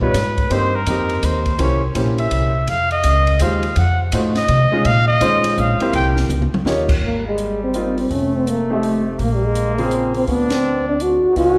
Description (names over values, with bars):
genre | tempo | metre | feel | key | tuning
jazz, small-group swing and bop | 166 BPM | 3/4 | swing 64% on 8ths | F minor | A4 = 437 Hz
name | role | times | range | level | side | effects
breathy trumpet | second line | 0.0-11.6 s | G3 to G5 | -24 LUFS | equal | none
warm concert grand piano | accompaniment | 0.0-11.6 s | Db3 to Eb5 | -25 LUFS | equal | none
upright bass | bass | 0.0-11.6 s | F1 to C3 | -22 LUFS | equal | none
compact cocktail drum kit | drums | 0.0-11.5 s | crash cymbal, hi-hat, kick drum, ride cymbal, snare drum, toms | -28 LUFS | equal | none
trombone with bucket mute | melody | 7.0-11.6 s | G3 to Gb4 | -20 LUFS | equal | none
room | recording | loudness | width
wet scoring stage reverb, RT60 1.8 s | recorded in a church or concert hall, lossy compression artefacts | -18 LUFS | mono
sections
0.0-7.0 A section; 7.0-11.6 B section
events
trumpet solo 0.0-7.0; drum fill 6.3-6.7; band accent 10.5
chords
0.0 G7b13; 0.5 Cm7; 1.6 C7b9; 2.7 Fm9; 3.8 F7b9; 4.8 Bbm11; 5.9 C7; 6.7 Eb7; 7.0 Ab6; 8.1 F7; 9.2 Bbm7; 10.3 D7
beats
0.14 | 0.51 0.87 1.23 | 1.59 1.95 2.31 | 2.68 3.04 3.40 | 3.76 4.12 4.49 | 4.85 5.21 5.57 | 5.93 6.29 6.65 | 7.01 7.38 7.74 | 8.10 8.46 8.82 | 9.19 9.55 9.91 | 10.27 10.63 11.00 | 11.36